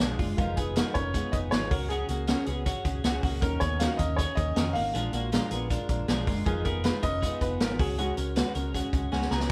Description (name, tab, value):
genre	jangly indie pop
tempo	158 BPM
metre	4/4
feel	straight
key	unclear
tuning	A4 = 440 Hz
part	clear upright piano	melody	0.0-9.5 s	F4 to Bb5	-36 LUFS	equal	none
part	fingerpicked steel-string acoustic guitar	accompaniment	0.0-9.5 s	Bb2 to Cb5	-37 LUFS	equal	none
part	twelve-string electric guitar	arpeggios	0.0-9.5 s	Ab3 to Cb5	-37 LUFS	equal	none
part	vintage muted fingered electric bass	bass	0.0-9.5 s	F1 to F2	-35 LUFS	equal	none
part	vintage drum kit	drums	0.0-9.5 s	crash cymbal, hi-hat, kick drum, snare drum	-32 LUFS	equal	none
room	light reverb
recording	band playing live in one room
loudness	-28 LUFS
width	mono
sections	0.0-9.5 A section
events	drum fill 9.1-9.5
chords	0.4 Fm7b5; 1.7 Dbsus4; 3.4 Ebm7; 4.9 Bb7; 6.5 Fm7b5; 7.8 Dbsus4